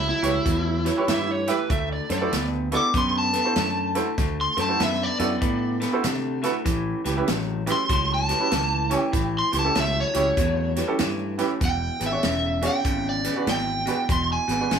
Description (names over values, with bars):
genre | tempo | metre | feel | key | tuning
electric blues shuffle | 97 BPM | 4/4 | swing 64% on 8ths | A mixolydian | A4 = 442 Hz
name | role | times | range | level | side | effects
overdriven semi-hollow guitar | melody | 0.0-14.8 s | E4 to D6 | -25 LUFS | equal | none
electric guitar through a small old amp | riff | 0.0-14.8 s | E2 to B3 | -28 LUFS | left 2 dB | none
fingered electric bass | bass | 0.0-14.8 s | E1 to C3 | -28 LUFS | equal | none
clear upright piano | accompaniment | 0.2-14.7 s | C#4 to E5 | -27 LUFS | right 5 dB | none
natural country drum kit | drums | 0.2-14.8 s | hi-hat, kick drum, snare drum | -29 LUFS | right 1 dB | none
overdriven slide guitar | second line | 1.1-2.4 s | B4 to E5 | -29 LUFS | right 4 dB | none
room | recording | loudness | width
light reverb | none | -21 LUFS | side -7 dB against mid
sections
0.0-14.8 A section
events
none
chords
0.0 A7; 1.7 D7; 6.7 A7; 11.6 E7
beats
0.46 1.08 | 1.70 2.32 2.94 3.56 | 4.18 4.80 5.42 6.04 | 6.66 7.28 7.90 8.52 | 9.14 9.76 10.38 10.99 | 11.61 12.23 12.85 13.47 | 14.09 14.71